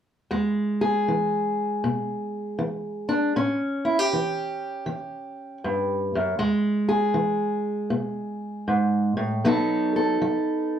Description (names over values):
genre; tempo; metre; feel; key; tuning
blues; 79 BPM; 4/4; swing 65% on 8ths; unclear; A4 = 439 Hz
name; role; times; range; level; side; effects
fingerpicked steel-string acoustic guitar; accompaniment; 0.3-10.8 s; E2 to A4; -22 LUFS; equal; none
room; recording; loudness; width
wet studio reverb, RT60 0.6 s; heard from further back in the room; -22 LUFS; side -9 dB against mid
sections
0.3-10.8 A section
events
none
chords
0.3 E; 3.4 A7; 6.4 E; 9.4 B7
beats
| 0.32 1.08 1.84 2.60 | 3.35 4.11 4.87 5.63 | 6.39 7.15 7.91 8.67 | 9.44 10.20